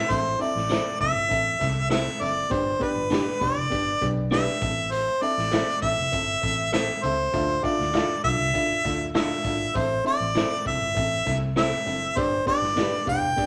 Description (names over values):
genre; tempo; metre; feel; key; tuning
uptempo 1960s-style soul; 99 BPM; 4/4; straight; A minor; A4 = 443 Hz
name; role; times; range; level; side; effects
clear harmonica; melody; 0.0-13.5 s; B4 to G5; -27 LUFS; equal; none
vintage muted fingered electric bass; bass; 0.0-13.5 s; E1 to D2; -34 LUFS; equal; none
dark upright piano; accompaniment; 0.1-13.5 s; B3 to F5; -32 LUFS; equal; none
raw garage drum kit; drums; 0.1-13.5 s; hi-hat, kick drum, snare drum; -33 LUFS; equal; none
electric guitar through a small old amp; stabs; 0.7-12.9 s; D4 to E5; -32 LUFS; equal; none
room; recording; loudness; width
moderate studio reverb, RT60 0.8 s; none; -24 LUFS; mono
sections
0.1-13.5 A section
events
none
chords
0.1 Am; 2.5 G; 4.6 Am; 7.3 Dmadd9; 9.8 Am; 12.2 G